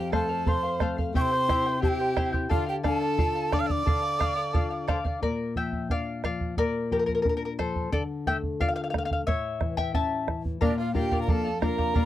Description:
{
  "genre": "andean folk, Andean ensemble",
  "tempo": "89 BPM",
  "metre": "2/4",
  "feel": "straight",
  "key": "unclear",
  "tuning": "A4 = 438 Hz",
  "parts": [
    { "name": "quena", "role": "melody", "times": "0.0-4.9, 10.6-12.1 s", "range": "D5 to F6", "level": "-29 LUFS", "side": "equal", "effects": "none" },
    { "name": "dark violin", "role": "second line", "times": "0.0-4.9, 10.6-12.1 s", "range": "D4 to F5", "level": "-32 LUFS", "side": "right 7 dB", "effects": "none" },
    { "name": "charango", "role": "accompaniment", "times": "0.0-12.1 s", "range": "E4 to A5", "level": "-30 LUFS", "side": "left 3 dB", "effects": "none" },
    { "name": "nylon-string guitar", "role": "accompaniment", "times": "0.0-12.1 s", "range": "F2 to G4", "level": "-31 LUFS", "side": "left 4 dB", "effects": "none" },
    { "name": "bombo", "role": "percussion", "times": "0.1-12.1 s", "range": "none", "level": "-28 LUFS", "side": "right 2 dB", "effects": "none" }
  ],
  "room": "light reverb",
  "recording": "dry, close 1970s-style studio recording",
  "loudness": "-24 LUFS",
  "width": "side -13 dB against mid",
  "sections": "0.0-5.2 A section; 5.2-10.6 B section; 10.6-12.1 C section",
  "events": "charango solo 5.2-10.6",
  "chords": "0.0 F; 1.1 C; 2.5 Dm; 5.2 Bb; 7.9 Dm; 9.3 A; 10.6 Bb"
}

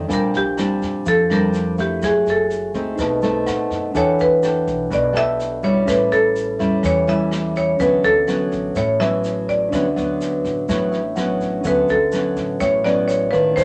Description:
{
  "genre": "bossa nova",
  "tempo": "125 BPM",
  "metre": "4/4",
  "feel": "straight",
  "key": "D major",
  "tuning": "A4 = 440 Hz",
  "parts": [
    { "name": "bell-like tine electric piano", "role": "accompaniment", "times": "0.0-13.6 s", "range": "C4 to A5", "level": "-30 LUFS", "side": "equal", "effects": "none" },
    { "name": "nylon-string guitar", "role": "accompaniment", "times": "0.0-13.6 s", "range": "A2 to A4", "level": "-23 LUFS", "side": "equal", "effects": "none" },
    { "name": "upright bass", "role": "bass", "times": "0.0-13.6 s", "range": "F#1 to A2", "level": "-35 LUFS", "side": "equal", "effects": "none" },
    { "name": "marimba with hard mallets", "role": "melody", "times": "0.1-13.6 s", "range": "G4 to E5", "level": "-21 LUFS", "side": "equal", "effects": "none" },
    { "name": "jazz brush drum kit", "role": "drums", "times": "0.1-13.6 s", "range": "kick drum, rim click, snare drum", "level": "-35 LUFS", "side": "equal", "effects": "none" },
    { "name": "egg shaker", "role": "percussion", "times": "0.1-13.6 s", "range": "none", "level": "-48 LUFS", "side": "equal", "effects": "none" }
  ],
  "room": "moderate studio reverb, RT60 0.5 s",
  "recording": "nothing above 11.0 kHz",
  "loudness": "-19 LUFS",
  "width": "mono",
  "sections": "0.0-11.6 A section; 11.6-13.6 A section",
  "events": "tine electric piano fill 3.0-4.0, 10.7-11.6",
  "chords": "0.1 Bb69; 2.0 F#m9; 3.0 B7b9; 4.0 Em11; 5.9 A7; 7.8 Dmaj13"
}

